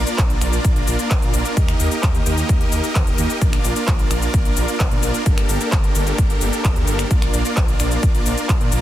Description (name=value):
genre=EDM, festival progressive house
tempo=130 BPM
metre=4/4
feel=straight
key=Bb major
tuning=A4 = 442 Hz
part: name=supersaw chords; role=riff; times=0.0-8.8 s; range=Bb3 to Eb5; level=-22 LUFS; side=equal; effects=sidechain pumping, ping-pong delay
part: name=wide detuned saw bass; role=bass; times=0.0-8.8 s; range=Eb1 to Bb2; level=-23 LUFS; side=equal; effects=chorus, sidechain pumping
part: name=big-room dance drum kit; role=drums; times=0.1-8.8 s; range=finger snaps, handclaps, hi-hat, shaker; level=-26 LUFS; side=left 1 dB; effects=overdrive, small room ambience
part: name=electronic kick drum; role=drums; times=0.2-8.6 s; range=none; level=-18 LUFS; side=equal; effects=overdrive, small room ambience
room=little or no reverb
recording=dense, heavily limited modern master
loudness=-16 LUFS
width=side -13 dB against mid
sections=0.0-8.8 A section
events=none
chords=0.0 Bb; 1.6 Eb; 3.4 Bb; 5.3 Gmadd9; 7.1 Bb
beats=0.18 0.65 1.11 | 1.57 2.03 2.49 2.95 | 3.41 3.88 4.34 4.80 | 5.26 5.72 6.18 6.64 | 7.11 7.57 8.03 8.49